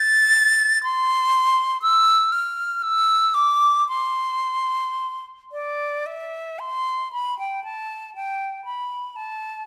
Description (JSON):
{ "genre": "classical, baroque-style fantasia for unaccompanied flute", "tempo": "54-62 BPM", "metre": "3/4", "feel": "rubato", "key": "C major", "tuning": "A4 = 439 Hz", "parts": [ { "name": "bright silver concert flute", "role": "solo", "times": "0.0-9.7 s", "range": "D5 to A6", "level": "-21 LUFS", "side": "equal", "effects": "none" } ], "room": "moderate recital hall reverb, RT60 1.4 s", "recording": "none", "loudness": "-21 LUFS", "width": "mono", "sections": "0.0-7.1 A section; 7.1-9.7 A section", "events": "none", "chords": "none", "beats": "| 0.83 1.82 2.83 | 3.88 4.98 6.06 | 7.12 8.15 9.16" }